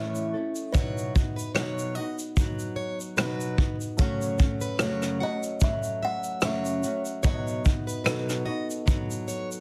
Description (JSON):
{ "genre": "acoustic pop", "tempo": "74 BPM", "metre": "4/4", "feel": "swing 55% on 16ths", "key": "unclear", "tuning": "A4 = 440 Hz", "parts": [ { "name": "kalimba", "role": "melody", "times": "0.0-9.6 s", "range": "B4 to F#5", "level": "-36 LUFS", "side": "equal", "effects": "plate reverb" }, { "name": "nylon-string guitar", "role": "accompaniment", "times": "0.0-9.6 s", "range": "F#2 to A4", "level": "-34 LUFS", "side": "equal", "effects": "plate reverb" }, { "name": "picked plugged-in steel-string acoustic guitar", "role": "arpeggios", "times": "0.0-9.5 s", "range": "B4 to F#5", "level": "-39 LUFS", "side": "equal", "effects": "plate reverb" }, { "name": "vintage brush drum kit", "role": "drums", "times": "0.2-9.6 s", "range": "kick drum, rim click, shaker", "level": "-28 LUFS", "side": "equal", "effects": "none" }, { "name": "felt-muted upright piano", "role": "accompaniment", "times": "4.0-9.6 s", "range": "A3 to D#5", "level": "-39 LUFS", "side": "equal", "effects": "plate reverb" } ], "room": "light reverb", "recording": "dense, heavily limited modern master", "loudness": "-28 LUFS", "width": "mono", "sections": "0.0-9.6 A section", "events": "none", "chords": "0.0 A; 0.7 B; 4.0 F#m; 7.2 B" }